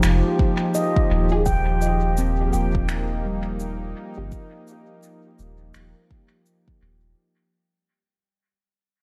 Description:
ambient dub; 84 BPM; 4/4; swing 60% on 16ths; A4 = 440 Hz
warm analog pad; sustained chords; 0.0-7.2 s; F3 to G4; -29 LUFS; equal; chorus
handpan; arpeggios; 0.0-5.2 s; G3 to G5; -30 LUFS; equal; low-pass filter, tape echo
soft dub sub bass; bass; 0.0-7.1 s; Eb1 to G1; -25 LUFS; equal; tube saturation
electronic finger snaps and cabasa; drums; 0.0-6.6 s; -33 LUFS; equal; overdrive, dub echo
electronic kick drum; drums; 0.4-6.8 s; -24 LUFS; equal
filtered dub chord stab; stabs; 1.3-4.4 s; Db4 to Ab4; -34 LUFS; equal
light reverb; vinyl crackle; -22 LUFS; mono
0.0-7.2 A section
fade-out 0.0-7.2
0.0 F7(no3); 1.5 Eb

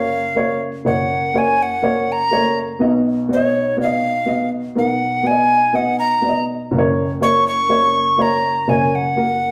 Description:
soul; 123 BPM; 4/4; straight; F# major; A4 = 439 Hz
mellow alto recorder; melody; 0.0-9.5 s; C#5 to C#6; -19 LUFS; equal
dark upright piano; accompaniment; 0.0-9.5 s; F#1 to D#5; -21 LUFS; equal
wet stone room reverb, RT60 1.1 s; band playing live in one room; -17 LUFS; mono
0.0-9.5 A section
0.0 F#; 2.8 B; 6.7 F#

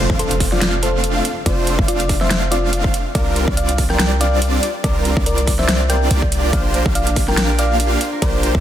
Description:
future bass; 142 BPM; 4/4; swing 55% on 16ths, half-time; F major; A4 = 439 Hz
thumb-piano-like synth pluck; melody; 0.0-8.6 s; F4 to G5; -23 LUFS; left 1 dB; chorus, sidechain pumping, digital delay
airy dreamy lead; arpeggios; 0.0-8.6 s; Bb4 to F5; -27 LUFS; equal; chorus, sidechain pumping
concert harp; arpeggios; 0.0-1.5, 6.5-8.6 s; D4 to F5; -29 LUFS; right 2 dB; sidechain pumping, digital delay
supersaw chords; riff; 0.0-8.6 s; G3 to F5; -22 LUFS; right 1 dB; sidechain pumping
warm 808-style bass; bass; 0.0-8.6 s; F1 to C2; -20 LUFS; equal; sidechain pumping
impact; sound effects; 0.0-1.5 s; -28 LUFS; equal
electronic kick drum; drums; 0.1-8.6 s; -20 LUFS; equal; overdrive
big-room dance drum kit; drums; 0.2-8.5 s; hi-hat, ride cymbal, snare drum; -22 LUFS; equal; overdrive
little or no reverb; dense, heavily limited modern master; -15 LUFS; side -11 dB against mid
0.0-8.6 A section
impact 0.0-1.5
0.0 F6; 2.9 C9sus4; 6.3 Bb69

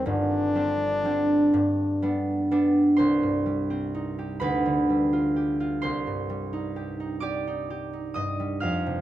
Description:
classical, romantic duo for French horn and harp; 42 BPM (dotted quarters); 6/8; rubato; C minor; A4 = 440 Hz
warm French horn; melody; 0.0-2.5 s; D4; -26 LUFS; left 2 dB
concert harp; accompaniment; 0.0-9.0 s; G1 to F6; -24 LUFS; right 1 dB
moderate large studio reverb, RT60 1.2 s; -23 LUFS; side -13 dB against mid
0.0-3.0 A section; 3.0-9.0 B section
0.1 Gsus4; 1.5 G; 3.0 Cm; 4.4 G7/D; 5.8 Cm

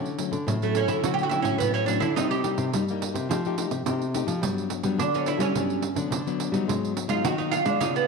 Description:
samba and choro; 106 BPM; 4/4; straight; A4 = 438 Hz
nylon-string guitar; accompaniment; 0.0-8.1 s; G2 to G4; -30 LUFS; left 10 dB
nylon-string guitar; bass; 0.0-8.1 s; A2 to G#3; -29 LUFS; left 1 dB
pandeiro; percussion; 0.1-8.1 s; -32 LUFS; right 8 dB
oud; second line; 0.6-8.0 s; A3 to G4; -26 LUFS; right 6 dB
wet echo chamber reverb, RT60 1.7 s, small room ambience; 1960s-style stereo with parts hard left and right; -23 LUFS; side -4 dB against mid
0.0-8.1 A section
oud solo 0.0-8.1
0.0 Dmaj7; 2.2 Cm7; 3.3 F9; 4.4 Gmaj7; 6.7 G#m7

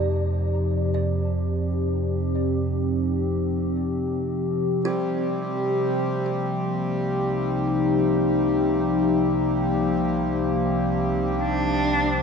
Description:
ambient; free time; C minor; A4 = 440 Hz
warbly tape-like pad; sustained chords; 0.0-12.2 s; C3 to G4; -23 LUFS; left 1 dB; chorus, built-in reverb
kalimba; arpeggios; 0.0-8.9 s; G4 to A5; -36 LUFS; right 2 dB; tape echo
deep rumbling drone; bass; 0.0-12.2 s; C2 to F2; -29 LUFS; equal; built-in reverb
hand-pumped harmonium; drone; 4.8-12.2 s; C3 to G3; -27 LUFS; right 1 dB; stereo widening
warm cello; melody; 11.4-12.2 s; D4; -23 LUFS; right 1 dB
wet huge ambient reverb, RT60 8.8 s; in a vast, echoing space, nothing above 10.6 kHz; -21 LUFS; side -6 dB against mid
0.0-4.8 A section; 4.8-12.2 B section
filter sweep on ambient pad 0.0-4.8; fade-in on synth drone 4.8-12.2
0.0 F7sus4; 4.8 Cm7

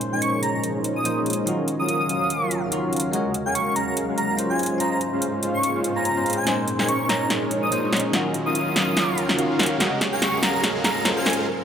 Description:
future bass; 144 BPM; 4/4; swing 56% on 16ths, half-time; A4 = 439 Hz
bell-like tine electric piano; accompaniment; 0.0-11.6 s; Bb2 to Db5; -28 LUFS; left 2 dB; phaser
shimmering ambient pad; sustained chords; 0.0-11.6 s; Eb2 to F5; -33 LUFS; equal; chorus, built-in reverb
big-room dance drum kit; drums; 0.0-11.4 s; hi-hat, snare drum; -24 LUFS; equal; small room ambience
riser and noise sweep; sound effects; 0.0-11.6 s; -33 LUFS; right 1 dB
airy dreamy lead; melody; 0.1-11.3 s; Ab5 to Eb6; -26 LUFS; equal; chorus, digital delay
soft supersaw; riff; 0.1-11.4 s; Gb3 to Ab5; -25 LUFS; equal; low-pass filter
wet digital room reverb, RT60 1.2 s; -20 LUFS; side -8 dB against mid
0.0-11.6 A section
build-up 0.0-11.6; filter sweep on supersaw synth 0.0-11.6; drum fill 6.5-11.5; break 11.5; noise sweep 11.5
0.0 Bbm11; 1.5 Ebm9; 3.1 Ab9sus4; 4.6 Dbmaj7/Ab; 6.5 Bbm11; 8.1 Ebm9; 9.8 Ab9sus4

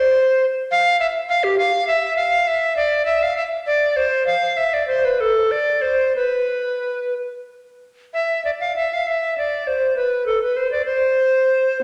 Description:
classical, baroque-style fantasia for unaccompanied recorder; 59-70 BPM (dotted quarters); 6/8; rubato; C major; A4 = 440 Hz
bright bass recorder; solo; 0.0-11.8 s; G4 to F5; -19 LUFS; equal
wet recital hall reverb, RT60 1.7 s; -19 LUFS; mono
0.0-8.1 A section; 8.1-11.8 A section

